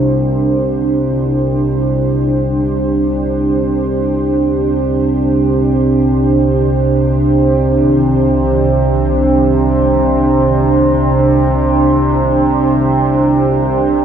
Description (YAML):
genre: dark ambient drone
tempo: free time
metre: none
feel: none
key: unclear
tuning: A4 = 445 Hz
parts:
  - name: sweeping resonant pad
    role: sustained chords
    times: 0.0-14.0 s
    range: D4 to C5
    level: -14 LUFS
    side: right 3 dB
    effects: chorus
  - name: analog drone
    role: drone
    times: 0.0-14.0 s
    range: C2 to C3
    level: -14 LUFS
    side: equal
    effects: chorus
  - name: old church bells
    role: arpeggios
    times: 7.8-13.8 s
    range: C3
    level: -22 LUFS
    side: right 2 dB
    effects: diffuse ambient delay
room: wet cathedral reverb, RT60 6.1 s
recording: small room ambience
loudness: -11 LUFS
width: side -8 dB against mid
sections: 0.0-14.0 A section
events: fade-in on church bells 0.0-14.0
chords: 0.0 Csus2